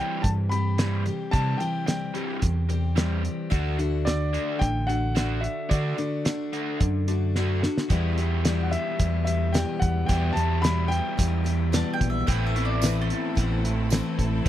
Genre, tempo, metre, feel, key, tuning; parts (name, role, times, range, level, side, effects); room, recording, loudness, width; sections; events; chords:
folk rock and heartland rock; 110 BPM; 4/4; straight; A4 = 443 Hz
warm concert grand piano; melody; 0.0-11.9 s; D5 to B5; -31 LUFS; left 1 dB
picked steel-string acoustic guitar; accompaniment; 0.0-14.5 s; E2 to G4; -32 LUFS; left 6 dB
crunchy overdriven guitar; riff; 0.0-14.5 s; E2 to F#4; -31 LUFS; right 2 dB; spring reverb
hollow-body short-scale fingered electric bass; bass; 0.2-14.5 s; A1 to D3; -25 LUFS; equal
cloth-damped thuddy drum kit; drums; 0.2-14.5 s; hi-hat, kick drum, snare drum; -25 LUFS; right 1 dB
bowl-back mandolin; second line; 11.7-14.1 s; A4 to A5; -33 LUFS; right 1 dB
bright symphonic string section; sustained chords; 12.3-14.5 s; C4 to B4; -37 LUFS; right 1 dB
tambourine; percussion; 12.8-14.0 s; -37 LUFS; right 19 dB
little or no reverb; dry, close 1970s-style studio recording; -23 LUFS; side -12 dB against mid
0.0-7.9 A section; 7.9-14.5 B section
drum fill 7.4-7.9
0.0 C; 3.5 D; 7.9 Em; 12.3 Amadd9